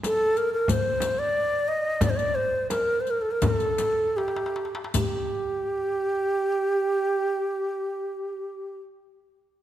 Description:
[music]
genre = Arabic maqam ensemble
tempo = 75-94 BPM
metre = 4/4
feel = straight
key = unclear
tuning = A4 = 439 Hz
[part]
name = darbuka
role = percussion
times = 0.0-5.3 s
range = none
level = -31 LUFS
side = left 3 dB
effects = none
[part]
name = frame drum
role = percussion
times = 0.0-5.3 s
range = none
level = -32 LUFS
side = right 1 dB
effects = none
[part]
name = riq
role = percussion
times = 0.0-5.3 s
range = none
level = -36 LUFS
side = left 4 dB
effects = none
[part]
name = breathy reedy ney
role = melody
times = 0.1-8.8 s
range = G4 to Eb5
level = -24 LUFS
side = right 1 dB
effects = none
[sound]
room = moderate concert hall reverb, RT60 1.9 s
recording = none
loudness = -23 LUFS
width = side -12 dB against mid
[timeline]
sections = 0.0-4.9 A section; 4.9-8.1 B section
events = slowing down 0.0-4.9; drum fill 4.2-4.9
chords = none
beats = 0.04 0.68 1.34 | 2.02 2.71 3.42 4.17 | 4.95 5.74 6.54 7.34

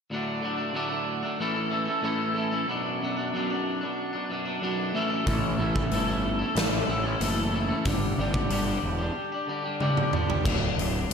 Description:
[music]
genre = quiet-loud alternative rock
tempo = 93 BPM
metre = 4/4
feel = straight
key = unclear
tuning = A4 = 440 Hz
[part]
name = twangy electric guitar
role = arpeggios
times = 0.1-11.1 s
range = B1 to A4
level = -27 LUFS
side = equal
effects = tape echo, slapback echo
[part]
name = fuzz picked electric bass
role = bass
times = 5.3-11.1 s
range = D1 to A1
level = -29 LUFS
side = equal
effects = overdrive
[part]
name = huge arena drum kit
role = drums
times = 5.3-11.1 s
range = crash cymbal, hi-hat, kick drum, snare drum, toms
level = -28 LUFS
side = right 1 dB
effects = none
[sound]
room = wet lush hall reverb, RT60 2.8 s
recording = big arena sound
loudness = -25 LUFS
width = side -6 dB against mid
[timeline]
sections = 0.1-10.5 A section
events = drum fill 9.8-10.5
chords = 0.1 D; 1.4 A; 2.7 Bm; 5.0 A; 7.9 G5; 10.5 D5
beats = | 0.10 0.75 1.39 2.04 | 2.69 3.33 3.98 4.63 | 5.28 5.92 6.57 7.22 | 7.87 8.52 9.16 9.81 | 10.46 11.11

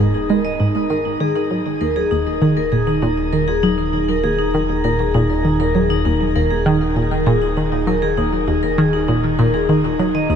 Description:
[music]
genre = ambient, sequencer-driven space music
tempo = 99 BPM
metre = 4/4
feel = straight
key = unclear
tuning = A4 = 440 Hz
[part]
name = vibraphone with medium hard mallets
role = arpeggios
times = 0.0-10.4 s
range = Eb4 to Eb5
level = -19 LUFS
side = left 2 dB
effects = auto-pan, tape echo
[part]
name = analog pluck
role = riff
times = 0.0-10.4 s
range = Eb2 to Ab3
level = -18 LUFS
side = right 1 dB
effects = chorus, tape echo
[part]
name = round analog bass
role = bass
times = 0.0-10.4 s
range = Eb1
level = -25 LUFS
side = equal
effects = none
[sound]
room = moderate shimmer reverb, RT60 6.5 s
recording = dark, warm production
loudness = -15 LUFS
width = side -8 dB against mid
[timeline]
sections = 0.0-10.4 A section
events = filter sweep on synth arpeggio sound 0.0-10.4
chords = 0.0 Ab5/Eb; 1.2 Eb5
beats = 0.60 | 1.21 1.81 2.42 3.02 | 3.63 4.24 4.84 5.45 | 6.05 6.66 7.27 7.87 | 8.48 9.09 9.69 10.30

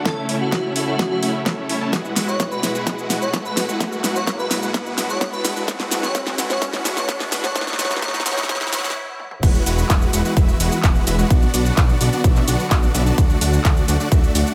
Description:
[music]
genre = EDM, festival progressive house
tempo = 128 BPM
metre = 4/4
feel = straight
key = A major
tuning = A4 = 440 Hz
[part]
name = rich studio string section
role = sustained chords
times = 0.0-14.5 s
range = A2 to A4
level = -32 LUFS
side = equal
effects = sidechain pumping
[part]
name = supersaw chords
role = riff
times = 0.0-14.5 s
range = G#3 to A5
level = -27 LUFS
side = equal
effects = sidechain pumping, low-pass filter, tape echo
[part]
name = riser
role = sound effects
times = 1.1-9.0 s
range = none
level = -35 LUFS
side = equal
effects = none
[part]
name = airy dreamy lead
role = melody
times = 0.1-8.9 s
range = F#4 to C#5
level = -29 LUFS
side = equal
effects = chorus, tape echo
[part]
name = electronic kick drum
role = drums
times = 0.1-14.2 s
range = none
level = -20 LUFS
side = equal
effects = high-pass filter on kick, high-pass filter on room
[part]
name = pop drum kit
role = drums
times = 0.1-14.5 s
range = crash cymbal, handclaps, hi-hat, shaker, snare drum, toms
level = -26 LUFS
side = equal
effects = none
[part]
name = fat analog bass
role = bass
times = 9.4-14.4 s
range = E1 to D2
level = -23 LUFS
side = equal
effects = sidechain pumping
[sound]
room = light reverb, digital ambience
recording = high-pass filter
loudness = -20 LUFS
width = mono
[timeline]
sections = 0.0-9.4 A section; 9.4-14.5 B section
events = build-up 0.0-9.4; drum fill 0.0-9.0, 9.2; riser 1.1-9.0; filter sweep on supersaw synth 0.0-9.4; filter sweep 0.0-9.4; stop 9.0-9.4; drop 9.4-14.5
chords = 0.1 A; 1.9 Eadd9; 3.8 Bm; 5.7 D; 7.6 A; 9.4 Eadd9; 11.3 Bm; 13.2 D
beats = | 0.06 0.52 0.99 1.46 | 1.93 2.40 2.87 3.34 | 3.81 4.27 4.74 5.21 | 5.68 6.15 6.62 7.09 | 7.55 8.02 8.49 8.96 | 9.43 9.90 10.37 10.84 | 11.30 11.77 12.24 12.71 | 13.18 13.65 14.12

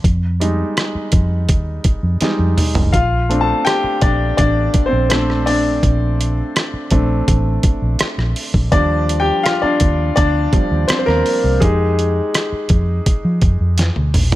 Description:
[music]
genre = lush 1970s-style soul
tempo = 83 BPM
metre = 4/4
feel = straight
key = Bb major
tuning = A4 = 440 Hz
[part]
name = clear grand piano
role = accompaniment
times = 0.0-14.4 s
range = F3 to A5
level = -18 LUFS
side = left 1 dB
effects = none
[part]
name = vintage muted fingered electric bass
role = bass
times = 0.0-14.4 s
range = F1 to F3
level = -17 LUFS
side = equal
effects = none
[part]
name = lo-fi sampler-style drum kit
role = drums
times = 0.0-14.4 s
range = hi-hat, kick drum, rim click, snare drum, toms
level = -17 LUFS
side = equal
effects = overdrive
[sound]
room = little or no reverb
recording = none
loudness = -14 LUFS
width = side -16 dB against mid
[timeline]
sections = 0.0-14.4 A section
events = grand piano solo 0.0-14.4; drum fill 2.2-2.9, 13.8-14.4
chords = 0.0 Fm7; 2.9 Bbmaj7; 8.7 Ebmaj7; 11.6 Fm7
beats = | 0.04 0.77 1.49 2.21 | 2.94 3.66 4.38 5.11 | 5.83 6.55 7.28 8.00 | 8.72 9.45 10.17 10.89 | 11.61 12.34 13.06 13.78

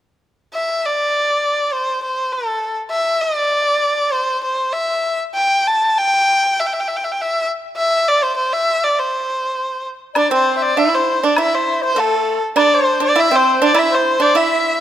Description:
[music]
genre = chinese traditional, Chinese chamber ensemble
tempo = 100 BPM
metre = 2/4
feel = rubato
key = C gong mode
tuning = A4 = 440 Hz
[part]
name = clear erhu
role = melody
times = 0.5-14.8 s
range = A4 to A5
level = -16 LUFS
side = equal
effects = none
[part]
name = large dizi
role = second line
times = 10.1-14.8 s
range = A4 to E5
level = -19 LUFS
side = left 5 dB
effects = none
[part]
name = pipa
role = second line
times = 10.2-14.8 s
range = A3 to E4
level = -18 LUFS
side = right 6 dB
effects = none
[part]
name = woodblock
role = percussion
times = 10.2-14.5 s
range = none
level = -24 LUFS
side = left 2 dB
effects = none
[sound]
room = moderate scoring stage reverb, RT60 1.8 s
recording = close, detailed microphones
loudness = -15 LUFS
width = side -11 dB against mid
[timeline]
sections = 0.5-10.2 A section; 10.2-14.8 B section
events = none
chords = none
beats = | 0.52 1.13 | 1.73 2.32 | 2.91 3.51 | 4.12 4.73 | 5.35 5.95 | 6.56 7.16 | 7.76 8.35 | 8.95 9.55 | 10.16 10.77 | 11.37 11.97 | 12.56 13.16 | 13.75 14.35

